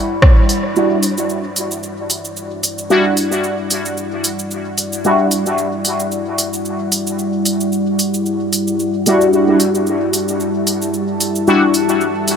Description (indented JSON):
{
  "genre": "dub techno",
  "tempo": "112 BPM",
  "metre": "4/4",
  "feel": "swing 56% on 16ths",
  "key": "E minor",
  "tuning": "A4 = 441 Hz",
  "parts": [
    { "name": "deep dark ambient pad", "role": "sustained chords", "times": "0.0-12.4 s", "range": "G3 to B5", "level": "-20 LUFS", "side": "left 1 dB", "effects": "chorus, built-in reverb, vintage 12-bit sampler grit, sidechain pumping" },
    { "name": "deep house drum kit", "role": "drums", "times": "0.2-12.4 s", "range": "cabasa, hi-hat, rim click", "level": "-19 LUFS", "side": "right 1 dB", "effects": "small room ambience" },
    { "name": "resonant sweep polysynth", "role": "stabs", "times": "0.8-5.3, 9.1-11.6 s", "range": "G3 to F#4", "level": "-17 LUFS", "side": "equal", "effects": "chorus, phaser, dub echo" }
  ],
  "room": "moderate huge ambient reverb, RT60 6.6 s",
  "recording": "none",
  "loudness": "-14 LUFS",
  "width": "side -7 dB against mid",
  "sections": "0.8-12.4 A section",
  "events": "band accent 0.2",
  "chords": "0.0 Em7; 0.8 Em9"
}